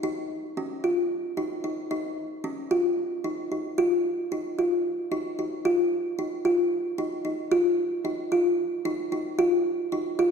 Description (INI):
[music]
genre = progressive instrumental, progressive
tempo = 225 BPM (eighths)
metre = 7/8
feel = straight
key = unclear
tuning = A4 = 439 Hz
[part]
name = kalimba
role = solo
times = 0.0-10.3 s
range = Db4 to F4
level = -24 LUFS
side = equal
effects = none
[sound]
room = wet concert hall reverb, RT60 1.9 s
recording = recorded in a church or concert hall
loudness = -24 LUFS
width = side -6 dB against mid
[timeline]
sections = 0.0-10.3 A section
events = none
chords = none